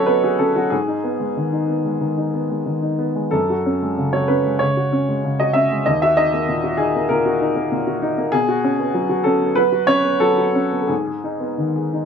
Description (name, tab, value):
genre	neoclassical minimalist piano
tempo	87-99 BPM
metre	4/4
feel	rubato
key	unclear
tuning	A4 = 440 Hz
part	warm upright piano	solo	0.0-12.1 s	D#2 to E5	-17 LUFS	equal	none
room	moderate studio reverb, RT60 0.6 s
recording	band playing live in one room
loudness	-17 LUFS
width	side -7 dB against mid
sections	0.0-12.1 A section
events	none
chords	0.0 Bsus2; 0.7 G#m; 3.3 F#madd9; 5.9 D#m; 8.3 Bsus2; 10.9 G#m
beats	0.09 | 0.73 1.38 2.03 2.68 | 3.34 3.99 4.62 5.25 | 5.88 6.50 7.10 7.72 | 8.34 8.96 9.58 10.22 | 10.90 11.59